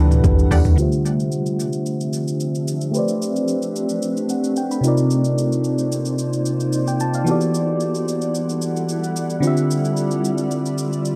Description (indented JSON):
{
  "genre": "amapiano",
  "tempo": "111 BPM",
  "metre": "4/4",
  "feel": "straight",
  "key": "D dorian",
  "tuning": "A4 = 440 Hz",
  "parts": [
    { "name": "FM electric piano", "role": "accompaniment", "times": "0.0-11.2 s", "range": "C3 to B5", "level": "-22 LUFS", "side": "equal", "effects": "chorus, low-pass filter" },
    { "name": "granular cloud pad", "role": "sustained chords", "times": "0.0-11.2 s", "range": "C3 to F#5", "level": "-28 LUFS", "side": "equal", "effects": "built-in reverb, sidechain pumping, low-pass filter" },
    { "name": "deep log drum bass", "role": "bass", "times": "0.0-0.8 s", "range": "D2 to E2", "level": "-18 LUFS", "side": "equal", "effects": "none" },
    { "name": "deep house drum kit", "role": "drums", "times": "0.1-11.2 s", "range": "hi-hat, kick drum, shaker, toms", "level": "-27 LUFS", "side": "equal", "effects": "none" },
    { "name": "congas", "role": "percussion", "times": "0.2-0.6 s", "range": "none", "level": "-29 LUFS", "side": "equal", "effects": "none" },
    { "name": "punchy chord stab", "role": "stabs", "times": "0.5-0.6 s", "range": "G4 to F#5", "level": "-32 LUFS", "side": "equal", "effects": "chorus, digital delay" }
  ],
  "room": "light reverb",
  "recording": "dark, warm production",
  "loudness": "-20 LUFS",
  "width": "mono",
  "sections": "0.8-11.2 A section",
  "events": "drum fill 0.0-0.8; filter sweep 0.8-11.2",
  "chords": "0.0 Em11; 0.8 Dm11; 2.9 Am11; 4.8 Cm11; 7.3 Em11; 9.4 Dm11"
}